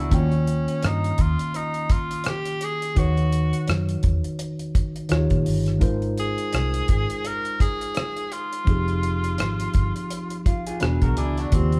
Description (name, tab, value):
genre	lush 1970s-style soul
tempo	84 BPM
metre	4/4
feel	swing 58% on 16ths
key	unclear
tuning	A4 = 439 Hz
part	bright tenor saxophone	melody	0.0-11.8 s	C4 to Bb4	-31 LUFS	equal	none
part	tine electric piano	accompaniment	0.0-11.8 s	Db3 to G5	-29 LUFS	equal	none
part	electric guitar through a small old amp	riff	0.0-0.3, 10.5-11.7 s	D4 to B4	-35 LUFS	equal	none
part	vintage muted fingered electric bass	bass	0.0-11.8 s	E1 to Bb2	-27 LUFS	equal	none
part	damped 70s drum kit	drums	0.1-11.8 s	hi-hat, kick drum, rim click	-26 LUFS	equal	none
room	moderate large studio reverb, RT60 1.3 s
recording	band playing live in one room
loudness	-23 LUFS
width	mono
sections	0.0-11.8 A section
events	none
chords	0.1 Eb7; 3.0 Db9sus4/Eb; 5.1 Eb9; 5.8 Ab6; 8.7 Fm9; 10.8 E9